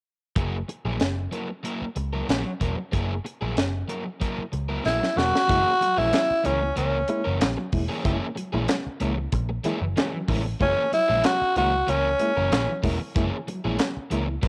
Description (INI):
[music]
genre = funk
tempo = 94 BPM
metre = 4/4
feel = straight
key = F# mixolydian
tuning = A4 = 440 Hz
[part]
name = crunchy overdriven guitar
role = accompaniment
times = 0.4-14.5 s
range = E3 to A#4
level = -34 LUFS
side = equal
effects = cassette tape
[part]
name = vintage muted picked electric bass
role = bass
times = 0.4-14.5 s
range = E1 to C#2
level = -30 LUFS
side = equal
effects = transformer saturation
[part]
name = crisp fusion drum kit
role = drums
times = 0.4-14.5 s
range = handclaps, hi-hat, kick drum, snare drum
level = -29 LUFS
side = equal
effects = cassette tape
[part]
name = growling tenor saxophone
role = melody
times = 4.9-12.8 s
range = C#4 to F#4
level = -24 LUFS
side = equal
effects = none
[part]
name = reed electric piano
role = stabs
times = 5.5-14.3 s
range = F#3 to E4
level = -34 LUFS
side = equal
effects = fast tremolo, cassette tape
[part]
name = congas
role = percussion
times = 5.5-14.5 s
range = none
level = -40 LUFS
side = equal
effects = none
[sound]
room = light reverb, small room ambience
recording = home recording on cassette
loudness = -25 LUFS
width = mono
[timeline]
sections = 0.4-5.5 A section; 5.5-14.5 B section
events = drum fill 4.9-5.5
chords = 0.4 F#9